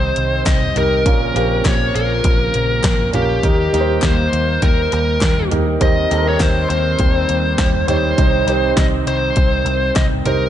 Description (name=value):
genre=piano-driven pop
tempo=101 BPM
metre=4/4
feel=swing 56% on 16ths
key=Eb mixolydian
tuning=A4 = 443 Hz
part: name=biting lead guitar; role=melody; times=0.0-10.5 s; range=G4 to Eb5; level=-19 LUFS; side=left 1 dB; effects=overdrive, analog delay
part: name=warm concert grand piano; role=accompaniment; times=0.0-10.5 s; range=Bb2 to Eb5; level=-22 LUFS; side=right 4 dB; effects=none
part: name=chorused pulse-width pad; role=sustained chords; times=0.0-10.5 s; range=Db3 to C4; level=-25 LUFS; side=left 1 dB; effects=none
part: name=vintage muted picked electric bass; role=bass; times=0.0-10.5 s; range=Bb1 to Eb2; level=-20 LUFS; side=equal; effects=none
part: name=house drum kit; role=drums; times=0.2-10.4 s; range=hi-hat, kick drum, snare drum, toms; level=-18 LUFS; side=equal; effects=none
part: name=group handclap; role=percussion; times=0.5-10.1 s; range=none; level=-35 LUFS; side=left 6 dB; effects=none
room=moderate plate reverb, RT60 2.2 s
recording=dreamy mix soaked in reverb, nothing above 10.5 kHz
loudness=-14 LUFS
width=side -11 dB against mid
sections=0.0-10.5 A section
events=none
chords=0.0 Cm; 1.1 Bbm; 3.4 Eb; 8.2 Cm